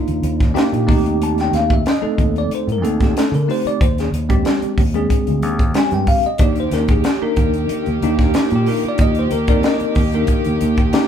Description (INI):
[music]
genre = electric jazz fusion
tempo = 92 BPM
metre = 4/4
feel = straight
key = unclear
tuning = A4 = 435 Hz
[part]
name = bell-like tine electric piano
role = accompaniment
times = 0.0-11.1 s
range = Ab3 to A5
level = -19 LUFS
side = equal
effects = fast stereo tremolo
[part]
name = fingered electric bass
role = bass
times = 0.1-10.9 s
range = D2 to D3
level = -20 LUFS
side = equal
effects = none
[part]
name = crisp fusion drum kit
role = drums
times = 0.1-11.1 s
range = hi-hat, kick drum, snare drum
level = -18 LUFS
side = equal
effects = none
[part]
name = bright chamber string section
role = sustained chords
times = 6.4-11.1 s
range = Eb3 to G4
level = -26 LUFS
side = right 2 dB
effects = none
[sound]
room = light reverb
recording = band playing live in one room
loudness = -14 LUFS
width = side -8 dB against mid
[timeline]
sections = 0.0-11.1 A section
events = tine electric piano fill 0.2-1.2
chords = 0.0 Cm9/Eb (rootless); 0.9 Cm69/Eb; 3.8 Fm13 (rootless); 6.4 Cm9/Eb